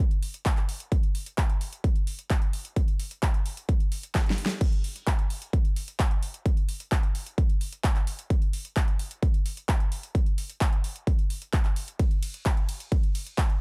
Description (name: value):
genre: EDM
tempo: 130 BPM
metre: 4/4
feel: straight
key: none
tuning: none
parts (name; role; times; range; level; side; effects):
- big-room dance drum kit; drums; 0.0-13.6 s; crash cymbal, handclaps, hi-hat, ride cymbal, snare drum; -36 LUFS; equal; none
- electronic kick drum; drums; 0.5-13.5 s; none; -27 LUFS; equal; none
room: little or no reverb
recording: dark, warm production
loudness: -27 LUFS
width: mono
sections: 0.0-13.6 A section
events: drum fill 4.1-4.6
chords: none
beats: 0.00 0.46 | 0.92 1.38 1.84 2.30 | 2.76 3.23 3.69 4.15 | 4.61 5.07 5.53 6.00 | 6.46 6.92 7.38 7.84 | 8.30 8.76 9.23 9.69 | 10.15 10.61 11.07 11.53 | 11.99 12.46 12.92 13.38